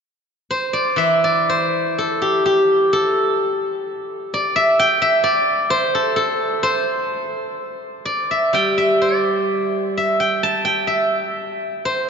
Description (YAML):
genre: chinese traditional, Chinese solo plucked strings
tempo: 64 BPM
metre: 2/4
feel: rubato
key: D shang mode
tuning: A4 = 439 Hz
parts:
  - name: steel-string zither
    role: solo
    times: 0.5-12.1 s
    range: E3 to A5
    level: -16 LUFS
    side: equal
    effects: none
room: wet cathedral reverb, RT60 5.1 s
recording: in a vast, echoing space, nothing above 7.6 kHz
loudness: -16 LUFS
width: side -6 dB against mid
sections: 1.0-12.1 A section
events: none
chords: none